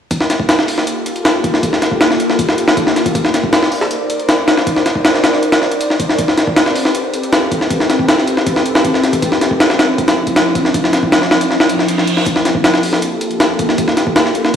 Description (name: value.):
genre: drum and bass, jungle.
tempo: 158 BPM.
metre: 4/4.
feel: straight.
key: none.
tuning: none.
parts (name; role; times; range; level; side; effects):
jungle sampler-style drum kit; drums; 0.1-14.5 s; hi-hat, kick drum, snare drum; -13 LUFS; equal; overdrive, high-pass filter on hats, high-pass filter on kick, high-pass filter on snare.
reverse cymbal; sound effects; 11.7-12.3 s; none; -24 LUFS; right 4 dB; none.
room: moderate plate reverb, RT60 1.8 s.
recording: played on a big sound system in a bare room, stone room reverb, vinyl crackle.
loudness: -11 LUFS.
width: side -8 dB against mid.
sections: 0.1-14.6 A section.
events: reverse cymbal 11.7-12.3.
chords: none.